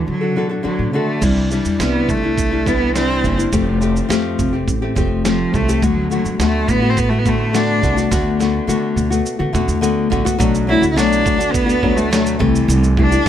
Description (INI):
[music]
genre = acoustic pop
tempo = 105 BPM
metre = 4/4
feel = straight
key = unclear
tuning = A4 = 440 Hz
[part]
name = rich cello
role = melody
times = 0.0-13.3 s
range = F3 to E4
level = -19 LUFS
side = right 1 dB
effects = tape echo
[part]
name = nylon-string guitar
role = accompaniment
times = 0.0-13.3 s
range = B2 to A4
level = -18 LUFS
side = left 4 dB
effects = none
[part]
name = upright bass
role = bass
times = 0.0-13.3 s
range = F1 to D3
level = -20 LUFS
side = right 1 dB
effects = none
[part]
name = dusty soul sampler-style drum kit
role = drums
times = 1.2-13.3 s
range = crash cymbal, kick drum, shaker, snare drum, toms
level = -22 LUFS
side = right 3 dB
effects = none
[sound]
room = light reverb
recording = none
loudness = -14 LUFS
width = side -10 dB against mid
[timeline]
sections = 0.0-1.2 A section; 1.2-10.4 B section; 10.4-13.3 C section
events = drum fill 8.1-10.4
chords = 0.0 D; 1.2 Cadd9; 3.5 Fadd9; 5.8 D6; 10.4 Bm7; 12.4 Am7/C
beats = 0.07 0.65 | 1.22 1.80 2.38 2.95 | 3.53 4.10 4.67 5.25 | 5.82 6.39 6.97 7.54 | 8.11 8.69 9.26 9.83 | 10.40 10.97 11.55 12.12 | 12.69 13.26